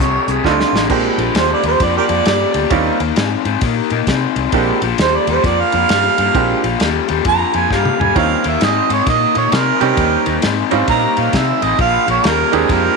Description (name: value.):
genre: electric blues shuffle.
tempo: 132 BPM.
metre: 4/4.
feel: swing 63% on 8ths.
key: Bb mixolydian.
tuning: A4 = 440 Hz.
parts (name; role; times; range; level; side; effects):
mellow harmonica; second line; 0.0-13.0 s; C4 to Bb5; -17 LUFS; right 10 dB; none.
raw garage guitar; riff; 0.0-13.0 s; F2 to C4; -18 LUFS; left 15 dB; overdrive.
vintage muted fingered electric bass; bass; 0.0-12.9 s; A1 to C3; -22 LUFS; equal; none.
warm soul drum kit; drums; 0.0-12.8 s; crash cymbal, hi-hat, kick drum, ride cymbal, snare drum, toms; -21 LUFS; equal; none.
bright upright piano; accompaniment; 0.4-13.0 s; G3 to G4; -19 LUFS; right 12 dB; none.
room: moderate echo chamber reverb, RT60 2.3 s.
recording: 1960s-style stereo with parts hard left and right.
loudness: -12 LUFS.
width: side -3 dB against mid.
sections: 0.9-13.0 A section.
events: drum fill 0.4-0.9, 7.7-8.2; harmonica solo 0.9-13.0.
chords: 0.0 F13; 0.9 Bb13; 2.7 Eb13; 4.5 Bb13; 8.2 Eb13; 11.8 Bb13.